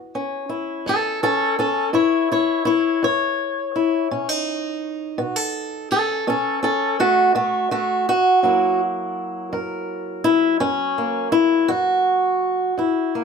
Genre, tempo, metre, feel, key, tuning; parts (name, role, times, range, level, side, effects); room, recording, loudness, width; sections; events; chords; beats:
acoustic country blues, solo or duo; 56 BPM (dotted quarters); 12/8; straight; F# mixolydian; A4 = 438 Hz
fingerpicked swing-style acoustic guitar; solo; 0.0-13.2 s; F#2 to C#5; -18 LUFS; left 1 dB
light reverb; -18 LUFS; side -6 dB against mid
0.0-13.2 A section
steel-string acoustic guitar solo 0.0-13.2
0.0 F#5; 4.1 B7; 8.4 F#7
0.88 1.96 3.04 | 4.12 5.20 6.28 7.36 | 8.44 9.52 10.60 11.68 | 12.76